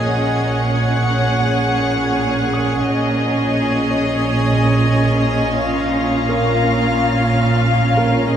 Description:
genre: cinematic, suspense film score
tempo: 88 BPM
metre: 4/4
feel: straight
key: Bb minor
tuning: A4 = 440 Hz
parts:
  - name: warm chamber violin section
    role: melody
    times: 0.0-8.4 s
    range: Eb5 to Gb5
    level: -22 LUFS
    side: left 3 dB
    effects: none
  - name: warm chamber violin section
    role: second line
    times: 0.0-8.4 s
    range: F4 to Ab4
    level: -25 LUFS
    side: equal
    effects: none
  - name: warm chamber viola section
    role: accompaniment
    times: 0.0-8.4 s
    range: Db4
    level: -22 LUFS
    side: right 2 dB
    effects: none
  - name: soft additive organ-like pad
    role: sustained chords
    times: 0.0-8.4 s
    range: Db5 to Bb5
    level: -24 LUFS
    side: left 1 dB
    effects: ensemble chorus, built-in reverb
  - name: dark chamber cello section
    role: bass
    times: 0.0-8.4 s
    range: Bb2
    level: -22 LUFS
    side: right 2 dB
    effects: none
  - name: warm studio double bass section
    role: bass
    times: 0.0-8.4 s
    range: Bb1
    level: -21 LUFS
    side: right 2 dB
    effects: none
  - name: clear grand piano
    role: texture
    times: 0.0-8.4 s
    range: Bb3 to F6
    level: -29 LUFS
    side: right 1 dB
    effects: none
  - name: warm chamber violin section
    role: texture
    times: 2.9-7.9 s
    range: Db6 to Bb6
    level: -30 LUFS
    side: left 2 dB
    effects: none
room: wet concert hall reverb, RT60 2.3 s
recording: none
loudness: -14 LUFS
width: side -9 dB against mid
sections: 0.0-8.4 A section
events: none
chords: 0.1 Gbadd9/Bb; 2.9 Absus4/Bb; 5.6 Bbm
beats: | 0.11 0.80 1.49 2.18 | 2.86 3.55 4.24 4.92 | 5.61 6.28 6.96 7.64 | 8.31

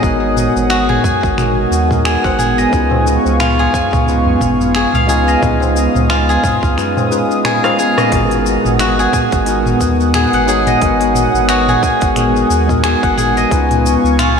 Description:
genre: organic downtempo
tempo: 89 BPM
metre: 4/4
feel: swing 57% on 16ths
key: G# dorian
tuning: A4 = 440 Hz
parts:
  - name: tine electric piano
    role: accompaniment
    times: 0.0-14.4 s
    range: G#3 to D#5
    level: -18 LUFS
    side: left 1 dB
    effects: fast stereo tremolo, sidechain pumping, ping-pong delay
  - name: warm analog pad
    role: sustained chords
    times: 0.0-14.4 s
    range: B3 to D#6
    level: -18 LUFS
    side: equal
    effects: chorus, sidechain pumping
  - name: steel-string zither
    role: arpeggios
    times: 0.0-14.4 s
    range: E#4 to G#5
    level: -17 LUFS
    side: left 2 dB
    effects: ping-pong delay
  - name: warm sub bass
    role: bass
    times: 0.0-14.4 s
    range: G#1 to D#2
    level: -18 LUFS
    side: right 1 dB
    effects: none
  - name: electronic kick drum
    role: drums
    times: 0.0-13.7 s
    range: none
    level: -20 LUFS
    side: right 1 dB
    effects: overdrive
  - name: organic electronic drum kit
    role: drums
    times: 0.0-14.3 s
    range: cabasa, finger snaps, hi-hat, rim click, toms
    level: -20 LUFS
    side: right 1 dB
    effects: overdrive
  - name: tabla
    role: percussion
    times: 0.4-7.8 s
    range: none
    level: -27 LUFS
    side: left 1 dB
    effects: none
room: wet cathedral reverb, RT60 6.0 s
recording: dreamy mix soaked in reverb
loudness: -11 LUFS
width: side -6 dB against mid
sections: 0.0-8.1 A section; 8.1-14.4 B section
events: drum fill 7.4-8.1; band accent 8.0-8.3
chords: 0.0 G#m7; 2.7 C#7; 8.1 G#m7; 13.5 C#7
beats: | 0.03 0.71 1.38 2.05 | 2.73 3.40 4.08 4.75 | 5.42 6.10 6.77 7.45 | 8.12 8.80 9.47 10.14 | 10.82 11.49 12.17 12.84 | 13.52 14.19

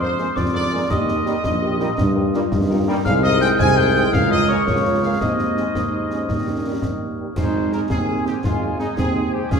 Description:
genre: military-style march for wind band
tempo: 111 BPM (dotted quarters)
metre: 6/8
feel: straight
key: Eb major, Ab major from 3.1 s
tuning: A4 = 440 Hz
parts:
  - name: mellow trumpet section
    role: melody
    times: 0.0-9.6 s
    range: Eb4 to Ab5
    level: -26 LUFS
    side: equal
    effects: none
  - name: glockenspiel with rubber mallets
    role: second line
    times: 0.0-7.1 s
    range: C6 to Ab6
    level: -26 LUFS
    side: left 2 dB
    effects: none
  - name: mellow euphonium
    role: second line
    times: 0.0-7.3 s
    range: Ab3 to Ab4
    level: -28 LUFS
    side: right 2 dB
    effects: none
  - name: warm woodwind section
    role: second line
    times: 0.0-9.6 s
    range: Ab4 to Ab5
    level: -29 LUFS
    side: left 1 dB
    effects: none
  - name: warm French horn section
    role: accompaniment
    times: 0.0-9.4 s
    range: G3 to C5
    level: -27 LUFS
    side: left 4 dB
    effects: none
  - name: mellow tuba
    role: bass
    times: 0.0-9.6 s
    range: Ab1 to G2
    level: -22 LUFS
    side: right 2 dB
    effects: none
  - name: mellow trombone section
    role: sustained chords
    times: 0.2-9.6 s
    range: G3 to Eb4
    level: -29 LUFS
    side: right 2 dB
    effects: none
  - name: concert snare drum, concert bass drum and clash cymbals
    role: drums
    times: 0.2-9.6 s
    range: none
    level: -25 LUFS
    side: left 1 dB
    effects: none
room: wet large studio reverb, RT60 1.3 s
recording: heard from further back in the room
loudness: -17 LUFS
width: side -6 dB against mid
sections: 0.0-7.4 A section; 7.4-9.6 B section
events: none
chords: 0.0 Bb7/F; 0.9 Eb; 2.0 Eb/G; 3.1 Ab/C; 4.1 Bbm7/Db; 5.2 Ab/Eb; 6.3 Eb; 7.4 Ab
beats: 0.36 | 0.90 1.44 | 1.98 2.52 | 3.06 3.60 | 4.13 4.67 | 5.21 5.75 | 6.29 6.83 | 7.36 7.90 | 8.44 8.98 | 9.52

